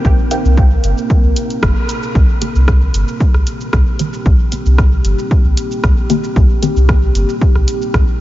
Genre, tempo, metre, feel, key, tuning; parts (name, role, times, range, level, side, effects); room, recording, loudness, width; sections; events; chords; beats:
dub techno; 114 BPM; 4/4; swing 53% on 16ths; C minor; A4 = 440 Hz
deep dark ambient pad; sustained chords; 0.0-8.2 s; Bb3 to Bb4; -22 LUFS; equal; chorus, built-in reverb, sidechain pumping
soft dub sub bass; bass; 0.0-8.0 s; G1 to C2; -12 LUFS; equal; sidechain pumping
electronic kick drum; drums; 0.0-8.1 s; -13 LUFS; equal
punchy analog drum machine; drums; 0.0-8.1 s; hi-hat, rim click, shaker; -24 LUFS; equal; dub echo
filtered dub chord stab; stabs; 0.3-6.8 s; Eb3 to G4; -22 LUFS; left 2 dB; phaser, dub echo
digital ambience; nothing above 7.5 kHz; -11 LUFS; side -15 dB against mid
0.0-2.2 A section; 2.2-8.2 A section
band accent 1.6; filter sweep on synth stab 2.2-8.2
0.0 Cm7
| 0.05 0.57 1.10 1.63 | 2.15 2.68 3.21 3.73 | 4.26 4.79 5.31 5.84 | 6.36 6.89 7.42 7.94